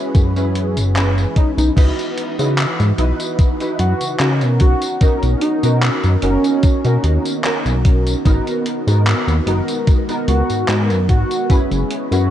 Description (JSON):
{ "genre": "vaporwave", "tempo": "74 BPM", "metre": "4/4", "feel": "swing 53% on 16ths", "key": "B major", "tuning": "A4 = 441 Hz", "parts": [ { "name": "warbly lo-fi synth keys", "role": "accompaniment", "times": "0.0-12.3 s", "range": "B3 to B4", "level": "-21 LUFS", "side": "right 1 dB", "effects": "ensemble chorus, tape echo" }, { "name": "warbly tape-like pad", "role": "sustained chords", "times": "0.0-12.3 s", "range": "D#3 to D#5", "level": "-29 LUFS", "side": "equal", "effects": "chorus, built-in reverb, phaser" }, { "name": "chorused synth bass", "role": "bass", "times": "0.1-12.3 s", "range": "F#1 to C#3", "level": "-16 LUFS", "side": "equal", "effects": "none" }, { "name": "electronic kick drum", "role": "drums", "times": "0.1-11.7 s", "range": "none", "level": "-13 LUFS", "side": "equal", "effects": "none" }, { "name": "gated 80s digital drum machine", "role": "drums", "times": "0.1-12.3 s", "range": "crash cymbal, handclaps, hi-hat, tambourine", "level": "-24 LUFS", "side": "left 1 dB", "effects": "gated reverb" }, { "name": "warm velvety synth lead", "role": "melody", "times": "1.4-12.3 s", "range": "C#4 to F#4", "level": "-23 LUFS", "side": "right 1 dB", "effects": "chorus, cassette tape, tape echo" } ], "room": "little or no reverb", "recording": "cassette tape", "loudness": "-14 LUFS", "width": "side -11 dB against mid", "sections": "0.0-1.8 A section; 1.8-12.3 B section", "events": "none", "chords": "0.0 F#9sus4; 1.8 C#m11; 4.6 Bmaj7; 8.3 G#m7; 11.5 F#9sus4" }